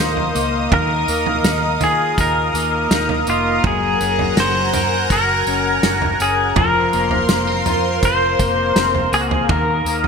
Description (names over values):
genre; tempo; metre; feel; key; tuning
dream pop; 82 BPM; 4/4; straight; Eb dorian; A4 = 442 Hz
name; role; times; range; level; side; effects
pedal steel guitar; melody; 0.0-10.1 s; F4 to C5; -19 LUFS; left 1 dB; lush chorus, ping-pong delay
lush unison pad; sustained chords; 0.0-10.1 s; Bb4 to Eb6; -21 LUFS; right 1 dB; chorus, phaser
electric guitar at the edge of break-up; arpeggios; 0.0-10.1 s; Eb3 to Bb4; -24 LUFS; left 4 dB; wide subtle chorus, ping-pong delay
vintage muted fingered electric bass; bass; 0.0-10.1 s; F1 to Eb3; -25 LUFS; equal; none
loose indie drum kit; drums; 0.2-10.1 s; kick drum, snare drum, tambourine, toms; -21 LUFS; right 1 dB; gated reverb
room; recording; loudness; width
moderate lush hall reverb, RT60 2.4 s; bright 1980s-style digital production; -15 LUFS; side -5 dB against mid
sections
0.0-10.1 A section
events
none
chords
0.0 Ebsus2; 3.6 Gbadd9; 6.6 Bbsus2/F; 9.5 Ebsus2